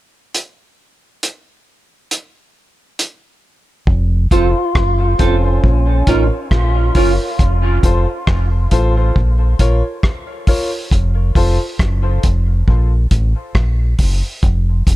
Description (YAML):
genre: dub reggae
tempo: 68 BPM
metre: 4/4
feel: swing 56% on 16ths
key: Bb harmonic minor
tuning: A4 = 439 Hz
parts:
  - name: cloth-damped thuddy drum kit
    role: drums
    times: 0.3-15.0 s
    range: hi-hat, kick drum, rim click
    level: -15 LUFS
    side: equal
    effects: none
  - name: deep dub fingered electric bass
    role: bass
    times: 3.9-15.0 s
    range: F1 to Bb1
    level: -15 LUFS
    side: equal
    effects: none
  - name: tonewheel organ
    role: melody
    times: 4.3-7.2 s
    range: Db4 to F4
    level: -22 LUFS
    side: equal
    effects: slow rotary speaker, dub echo
  - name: clean electric guitar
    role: accompaniment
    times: 4.3-7.1 s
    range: C4 to Bb4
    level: -23 LUFS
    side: right 6 dB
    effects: dub echo
  - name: warm baby grand piano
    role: stabs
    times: 4.3-11.6 s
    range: F4 to Db5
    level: -23 LUFS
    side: left 2 dB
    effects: dub echo
room: small room ambience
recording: echo-heavy mix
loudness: -13 LUFS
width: side -16 dB against mid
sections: 0.3-3.9 A section; 3.9-15.0 B section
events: none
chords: 0.3 N.C.; 3.9 F; 5.6 Bbm; 7.4 F; 9.2 Bbm; 10.9 N.C.; 12.7 Gb; 14.4 N.C.